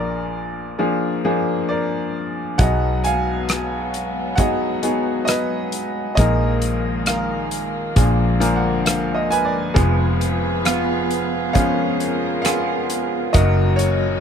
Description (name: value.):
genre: acoustic folk-pop ballad.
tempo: 67 BPM.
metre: 4/4.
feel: straight.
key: unclear.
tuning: A4 = 440 Hz.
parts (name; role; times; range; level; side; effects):
bright upright piano; melody; 0.0-14.2 s; F1 to Ab5; -20 LUFS; left 1 dB; none.
vintage muted fingered electric bass; bass; 0.0-14.2 s; F1 to Cb2; -21 LUFS; equal; none.
warm chamber string section; sustained chords; 2.6-14.2 s; Bb2 to Cb5; -28 LUFS; left 1 dB; none.
loose indie drum kit; drums; 2.6-14.0 s; hi-hat, kick drum, rim click; -20 LUFS; equal; none.
electric guitar through a small old amp; arpeggios; 9.8-14.2 s; F3 to Ab4; -25 LUFS; right 4 dB; harmonic tremolo.
room: little or no reverb.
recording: close, detailed microphones.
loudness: -17 LUFS.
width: side -7 dB against mid.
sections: 0.0-9.8 A section; 9.8-14.2 B section.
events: upright piano fill 8.0-9.8.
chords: 0.0 Bb7; 2.6 Abm7/Cb; 6.2 Bb7sus4; 8.0 Bb7; 9.8 Fdim; 13.3 Ebm/Gb.